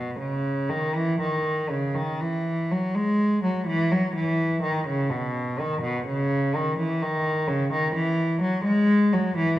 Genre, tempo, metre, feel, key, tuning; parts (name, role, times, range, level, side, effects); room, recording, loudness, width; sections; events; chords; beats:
classical, baroque-style suite movement for unaccompanied cello; 59-65 BPM; 3/4; rubato; E major; A4 = 440 Hz
rich cello; solo; 0.0-9.6 s; B2 to G#3; -22 LUFS; equal
wet recital hall reverb, RT60 1.6 s; dark, warm production; -22 LUFS; side -14 dB against mid
0.0-9.6 A section
0.95 1.97 | 2.96 3.92 4.88 | 5.84 6.79 7.72 | 8.67